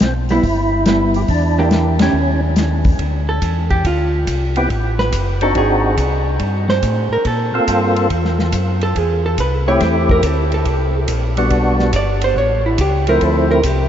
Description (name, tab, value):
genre	soul jazz organ trio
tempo	141 BPM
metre	4/4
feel	swing 67% on 8ths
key	unclear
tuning	A4 = 440 Hz
part	percussive tonewheel organ	melody	0.0-13.6 s	F3 to A4	-19 LUFS	equal	slow rotary speaker, overdrive, chorus vibrato
part	mellow tonewheel organ	bass	0.0-13.9 s	F#1 to Bb2	-18 LUFS	equal	slow rotary speaker
part	warm soul drum kit	drums	0.0-13.8 s	hi-hat, kick drum, ride cymbal, snare drum	-22 LUFS	left 1 dB	none
part	vintage hollow-body jazz guitar	accompaniment	0.3-13.9 s	Eb3 to D5	-20 LUFS	right 2 dB	none
room	moderate huge ambient reverb, RT60 7.5 s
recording	in a vast, echoing space, nothing above 7.7 kHz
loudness	-14 LUFS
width	side -9 dB against mid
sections	0.0-3.0 A section; 3.0-13.9 B section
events	band accent 1.9; hollow-body jazz guitar solo 3.0-13.9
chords	0.0 Cmaj7; 1.3 Em7b5; 2.1 C#sus2/D#; 3.0 Dm7; 4.7 Am; 5.6 G#7#11; 6.4 Gm11; 8.1 C6; 9.8 Am7; 11.5 Gmaj7; 12.4 A; 13.2 Dm7